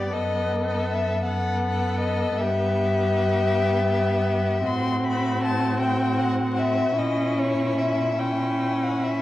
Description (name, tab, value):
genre	classical, slow romantic movement for string quartet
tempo	46-54 BPM (dotted quarters)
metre	12/8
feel	rubato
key	E minor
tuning	A4 = 440 Hz
part	rich violin	melody	0.0-9.2 s	C#5 to C6	-26 LUFS	left 4 dB	none
part	rich violin	second line	0.0-9.2 s	E4 to A4	-29 LUFS	left 1 dB	none
part	rich viola	accompaniment	0.0-9.2 s	B3 to C#4	-26 LUFS	right 1 dB	none
part	warm cello	bass	0.0-9.2 s	F#2 to A#2	-27 LUFS	right 1 dB	none
room	moderate recital hall reverb, RT60 1.5 s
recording	worn, warbling old tape, cassette tape, vinyl crackle, warbly pitch drift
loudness	-21 LUFS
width	side -14 dB against mid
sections	0.0-9.2 A section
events	none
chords	0.1 B7/F#; 2.4 Em/G; 4.7 F#dim/A; 7.0 A#dim